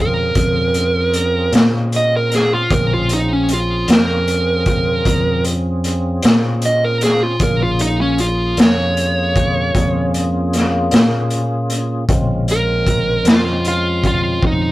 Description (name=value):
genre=slow blues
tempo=51 BPM (dotted quarters)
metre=12/8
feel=straight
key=Bb minor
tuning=A4 = 440 Hz
part: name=dark smooth lead guitar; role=melody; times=0.0-14.7 s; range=Db4 to Eb5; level=-17 LUFS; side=right 2 dB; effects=overdrive
part: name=tonewheel organ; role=sustained chords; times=0.0-14.7 s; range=Ab3 to Ab4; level=-25 LUFS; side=left 1 dB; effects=slow rotary speaker, overdrive, chorus vibrato
part: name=fingered electric bass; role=bass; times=0.0-14.7 s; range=Bb1 to Bb2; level=-19 LUFS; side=equal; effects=none
part: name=raw garage drum kit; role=drums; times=0.4-14.6 s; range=hi-hat, kick drum, snare drum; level=-16 LUFS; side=equal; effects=none
room=light reverb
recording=rough rehearsal-room recording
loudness=-13 LUFS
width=side -17 dB against mid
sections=0.0-14.7 A section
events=lead electric guitar solo 0.0-14.7; drum fill 14.4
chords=0.0 Bbm7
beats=0.36 1.54 | 2.71 3.89 5.06 6.23 | 7.41 8.58 9.75 10.92 | 12.09 13.26 14.43